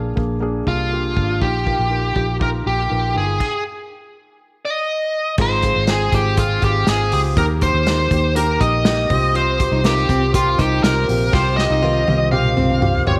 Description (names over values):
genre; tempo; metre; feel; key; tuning
piano-driven pop; 121 BPM; 4/4; straight; unclear; A4 = 440 Hz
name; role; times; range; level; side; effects
felt-muted upright piano; accompaniment; 0.0-13.2 s; Ab2 to Bb4; -26 LUFS; equal; none
vintage muted fingered electric bass; bass; 0.0-13.2 s; G1 to Eb2; -23 LUFS; equal; none
unplugged drum kit; drums; 0.2-13.2 s; crash cymbal, hi-hat, kick drum, snare drum, toms; -24 LUFS; equal; none
smooth overdriven lead guitar; melody; 0.7-13.1 s; F4 to F5; -22 LUFS; equal; slapback echo
fingerpicked plugged-in steel-string acoustic guitar; riff; 9.3-12.8 s; C4 to F4; -28 LUFS; equal; none
room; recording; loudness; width
moderate echo chamber reverb, RT60 2.2 s; none; -18 LUFS; mono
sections
0.0-5.4 A section; 5.4-13.2 B section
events
stop 3.4-5.4; drum fill 11.3-13.2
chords
0.0 Bb7; 1.4 Ebadd9/Bb; 3.4 N.C.; 5.4 Ab6; 7.4 Eb; 9.1 Csus4